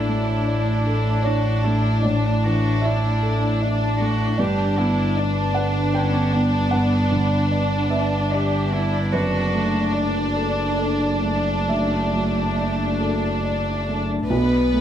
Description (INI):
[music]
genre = neoclassical piano and strings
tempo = 64-78 BPM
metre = 3/4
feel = rubato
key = unclear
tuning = A4 = 440 Hz
[part]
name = warm chamber violin section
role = melody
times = 0.0-14.8 s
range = D4 to B4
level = -24 LUFS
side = left 2 dB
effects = none
[part]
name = warm cello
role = second line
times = 0.0-14.8 s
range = A3 to G4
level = -27 LUFS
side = right 4 dB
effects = none
[part]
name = felt-muted upright piano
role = accompaniment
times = 0.0-14.8 s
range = B1 to G5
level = -25 LUFS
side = right 1 dB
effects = none
[part]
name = soft additive organ-like pad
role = sustained chords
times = 0.2-14.8 s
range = D3 to D5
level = -31 LUFS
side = equal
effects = none
[part]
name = rich double bass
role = bass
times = 0.0-14.8 s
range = F#1 to B1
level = -23 LUFS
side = equal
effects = none
[sound]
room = moderate large studio reverb, RT60 1.3 s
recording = none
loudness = -18 LUFS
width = side -10 dB against mid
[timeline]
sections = 0.0-14.3 A section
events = none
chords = 0.0 Asus4; 4.4 G; 9.1 D/F#; 14.3 Bm7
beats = 0.46 1.25 | 2.03 2.83 3.61 | 4.38 5.16 5.95 | 6.74 7.53 8.33 | 9.13 9.95 10.79 | 11.70 12.58 13.44 | 14.30